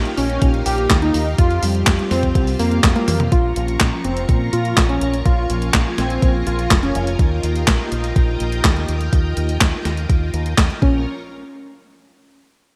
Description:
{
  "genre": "italo disco",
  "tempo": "124 BPM",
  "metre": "4/4",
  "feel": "straight",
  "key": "Bb dorian",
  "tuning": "A4 = 439 Hz",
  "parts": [
    { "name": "string machine, full ensemble", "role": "sustained chords", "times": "0.0-11.0 s", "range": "C4 to Db6", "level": "-30 LUFS", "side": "equal", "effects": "ensemble chorus" },
    { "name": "mellow synth brass", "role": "stabs", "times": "0.0-11.0 s", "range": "F3 to G4", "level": "-31 LUFS", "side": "equal", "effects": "chorus" },
    { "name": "fingered electric bass with an envelope filter", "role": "bass", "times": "0.0-11.0 s", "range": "F1 to Bb2", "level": "-24 LUFS", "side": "equal", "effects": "none" },
    { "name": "clean 12-bit digital drum machine", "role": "drums", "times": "0.1-10.8 s", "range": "handclaps, hi-hat, snare drum, toms", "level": "-23 LUFS", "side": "equal", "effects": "gated reverb" },
    { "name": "unison lead", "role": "melody", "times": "0.2-7.1, 10.8-11.0 s", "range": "Bb3 to G4", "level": "-25 LUFS", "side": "equal", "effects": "delay" },
    { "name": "electronic kick drum", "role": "drums", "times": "0.4-10.9 s", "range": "none", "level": "-19 LUFS", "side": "equal", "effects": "none" }
  ],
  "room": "light reverb, digital ambience",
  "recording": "bright 1980s-style digital production",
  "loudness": "-18 LUFS",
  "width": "mono",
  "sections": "0.0-3.3 A section; 3.3-11.1 B section; 11.1-12.8 C section",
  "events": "drum fill 3.0-3.3",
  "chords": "0.0 Ebadd9; 1.4 Fsus2; 3.3 Bbm; 7.2 Ebadd9; 10.8 Bbm; 11.1 N.C."
}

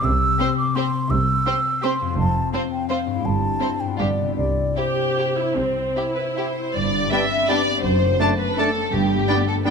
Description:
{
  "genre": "classical, orchestral ballroom waltz",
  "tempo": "146-186 BPM",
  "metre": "3/4",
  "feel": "rubato",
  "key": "C major",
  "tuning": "A4 = 440 Hz",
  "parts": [
    { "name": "mellow baroque flute", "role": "second line", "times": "0.0-9.7 s", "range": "C5 to E6", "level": "-24 LUFS", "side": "right 1 dB", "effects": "none" },
    { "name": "concert harp", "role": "arpeggios", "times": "0.0-9.7 s", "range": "F2 to C5", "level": "-26 LUFS", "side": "left 10 dB", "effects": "none" },
    { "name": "dark symphonic cello section", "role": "bass", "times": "0.0-9.2 s", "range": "F2 to C3", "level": "-26 LUFS", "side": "right 4 dB", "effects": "none" },
    { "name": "warm symphonic double bass section", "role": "bass", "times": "0.0-9.2 s", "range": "F1 to C2", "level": "-26 LUFS", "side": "right 3 dB", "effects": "none" },
    { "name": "warm symphonic violin section", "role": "melody", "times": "0.4-9.7 s", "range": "G4 to A5", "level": "-30 LUFS", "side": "left 2 dB", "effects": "none" },
    { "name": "rich symphonic violin section", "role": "second line", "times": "0.4-9.7 s", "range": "E4 to E5", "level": "-24 LUFS", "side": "left 1 dB", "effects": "none" },
    { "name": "warm symphonic viola section", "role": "accompaniment", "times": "0.4-9.7 s", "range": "A3 to G4", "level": "-28 LUFS", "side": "right 2 dB", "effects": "none" },
    { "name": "clear clarinet", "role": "second line", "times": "7.1-9.7 s", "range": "B3 to D4", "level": "-32 LUFS", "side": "left 2 dB", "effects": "none" },
    { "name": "clear oboe", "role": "second line", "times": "7.1-9.7 s", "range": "D5", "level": "-29 LUFS", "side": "right 1 dB", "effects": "none" },
    { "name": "mellow bassoon", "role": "accompaniment", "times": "7.1-9.7 s", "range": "G3 to A3", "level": "-31 LUFS", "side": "right 1 dB", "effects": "none" },
    { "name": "dark French horn section", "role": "sustained chords", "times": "7.1-9.7 s", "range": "G3 to D4", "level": "-31 LUFS", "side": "left 4 dB", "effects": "none" },
    { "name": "timpani", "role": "percussion", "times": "8.9-9.4 s", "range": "G2", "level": "-28 LUFS", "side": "equal", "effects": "none" }
  ],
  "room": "moderate scoring stage reverb, RT60 1.7 s",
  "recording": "none",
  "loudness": "-19 LUFS",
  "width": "side -5 dB against mid",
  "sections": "0.0-6.8 A section; 6.8-9.7 B section",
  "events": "none",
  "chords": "0.1 C; 2.2 F; 3.2 C/G; 4.4 C; 6.8 G; 7.8 D7/F#; 8.9 G"
}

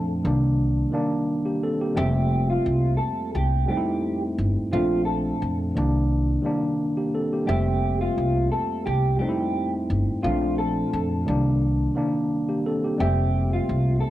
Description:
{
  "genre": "hip hop",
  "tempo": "87 BPM",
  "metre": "4/4",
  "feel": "swing 57% on 16ths",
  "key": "F major",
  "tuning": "A4 = 440 Hz",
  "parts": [
    { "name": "mellow electric guitar", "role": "melody", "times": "0.0-14.1 s", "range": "F4 to A4", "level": "-28 LUFS", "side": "right 1 dB", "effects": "wide subtle chorus, high-pass filter, low-pass filter, cassette tape, analog delay" },
    { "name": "tine electric piano", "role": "accompaniment", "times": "0.0-14.1 s", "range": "C2 to E5", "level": "-25 LUFS", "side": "equal", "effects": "medium stereo tremolo, high-pass filter, low-pass filter, cassette tape" },
    { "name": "upright bass", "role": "bass", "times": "0.0-14.0 s", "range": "F1 to F2", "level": "-24 LUFS", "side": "equal", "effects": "none" }
  ],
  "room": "light reverb",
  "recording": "home recording on cassette",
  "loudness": "-21 LUFS",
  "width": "side -14 dB against mid",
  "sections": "0.0-14.1 A section",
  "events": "none",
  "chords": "0.2 Cm9; 2.0 Fmaj9; 4.7 Bbmaj9; 5.8 Cm9; 7.5 Fmaj9; 10.2 Bbmaj9; 11.3 Cm9; 13.0 Fmaj9"
}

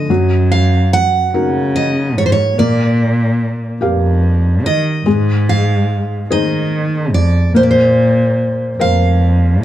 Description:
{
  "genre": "folk",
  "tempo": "48 BPM (dotted quarters)",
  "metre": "6/8",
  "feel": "straight",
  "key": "unclear",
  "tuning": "A4 = 439 Hz",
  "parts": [
    { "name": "picked steel-string acoustic guitar", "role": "melody", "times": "0.0-9.6 s", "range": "C5 to Gb5", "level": "-17 LUFS", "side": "right 2 dB", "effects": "none" },
    { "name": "felt-muted upright piano", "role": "accompaniment", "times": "0.0-9.6 s", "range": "D3 to F5", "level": "-19 LUFS", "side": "left 2 dB", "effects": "none" },
    { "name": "warm cello", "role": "bass", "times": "0.1-9.6 s", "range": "F2 to Eb3", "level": "-14 LUFS", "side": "equal", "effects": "none" }
  ],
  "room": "light reverb",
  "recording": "dark, warm production",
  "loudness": "-12 LUFS",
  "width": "side -12 dB against mid",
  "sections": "0.1-9.6 A section",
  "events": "none",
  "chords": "0.1 Gb6; 2.6 Bb6; 5.1 Ab; 7.5 Bbsus2"
}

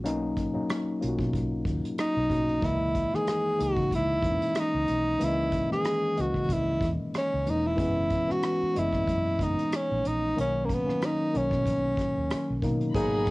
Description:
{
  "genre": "R&B, neo-soul",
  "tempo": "93 BPM",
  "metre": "4/4",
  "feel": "swing 54% on 16ths",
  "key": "unclear",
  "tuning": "A4 = 440 Hz",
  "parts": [
    { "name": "mellow tine electric piano", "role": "accompaniment", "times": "0.0-13.3 s", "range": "D#3 to D#5", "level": "-30 LUFS", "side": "left 2 dB", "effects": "cassette tape" },
    { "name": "vintage muted fingered electric bass", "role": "bass", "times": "0.0-13.3 s", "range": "E1 to C#3", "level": "-32 LUFS", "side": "equal", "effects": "none" },
    { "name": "unplugged drum kit", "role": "drums", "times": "0.1-13.3 s", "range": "hi-hat, kick drum, rim click", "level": "-34 LUFS", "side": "equal", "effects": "cassette tape" },
    { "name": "breathy tenor saxophone", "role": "melody", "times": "2.0-13.3 s", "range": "A#3 to G#4", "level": "-27 LUFS", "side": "equal", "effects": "none" },
    { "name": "bright studio string section", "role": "sustained chords", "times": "12.9-13.3 s", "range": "F#5 to B5", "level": "-41 LUFS", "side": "left 3 dB", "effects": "cassette tape" }
  ],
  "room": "light reverb",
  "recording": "home recording on cassette",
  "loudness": "-25 LUFS",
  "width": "side -21 dB against mid",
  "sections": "0.0-12.9 A section",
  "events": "none",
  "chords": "0.0 Bmaj9; 2.6 C#m69; 7.8 F#9sus4; 10.4 Bmaj9"
}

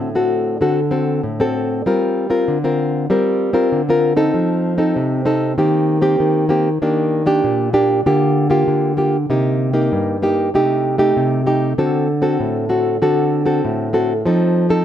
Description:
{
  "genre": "samba",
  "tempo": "97 BPM",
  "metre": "4/4",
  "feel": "straight",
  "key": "G minor",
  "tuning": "A4 = 441 Hz",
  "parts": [
    { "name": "nylon-string guitar", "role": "solo", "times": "0.0-14.8 s", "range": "G2 to Bb4", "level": "-14 LUFS", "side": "equal", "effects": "none" }
  ],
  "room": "light reverb",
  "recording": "none",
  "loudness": "-14 LUFS",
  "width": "side -10 dB against mid",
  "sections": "0.0-4.3 A section; 4.3-14.8 B section",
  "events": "none",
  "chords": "0.0 D7; 1.9 Gm11; 4.3 F7; 5.6 Cm7/Eb; 6.8 Ebmaj7; 8.1 Gm7/D; 9.3 Cm7; 10.5 Am7b5/C; 11.8 D7; 14.3 F7"
}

